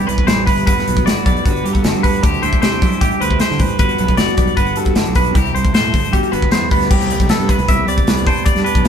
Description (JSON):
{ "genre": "math rock and midwest emo", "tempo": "154 BPM", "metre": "4/4", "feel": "straight", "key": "G major", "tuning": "A4 = 439 Hz", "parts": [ { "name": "twelve-string electric guitar", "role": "accompaniment", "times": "0.0-8.9 s", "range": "G2 to C5", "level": "-20 LUFS", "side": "right 2 dB", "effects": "spring reverb" }, { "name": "twangy electric guitar", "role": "arpeggios", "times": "0.0-8.8 s", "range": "G4 to E5", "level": "-19 LUFS", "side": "left 2 dB", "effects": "none" }, { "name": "fuzz fingered electric bass", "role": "bass", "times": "0.1-8.9 s", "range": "G1 to D3", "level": "-20 LUFS", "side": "equal", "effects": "overdrive" }, { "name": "modern studio drum kit", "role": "drums", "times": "0.1-8.9 s", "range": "crash cymbal, hi-hat, kick drum, snare drum", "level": "-16 LUFS", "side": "equal", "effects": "none" } ], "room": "moderate stone room reverb, RT60 1.1 s", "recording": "band playing live in one room", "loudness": "-13 LUFS", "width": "side -8 dB against mid", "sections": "0.0-6.9 A section; 6.9-8.9 B section", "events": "none", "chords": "0.0 Cmaj7; 0.7 Gmaj7; 2.2 D9sus4; 3.8 Gmaj7; 5.4 Cmaj7; 6.1 Gmaj7; 6.9 Cmaj7sus2" }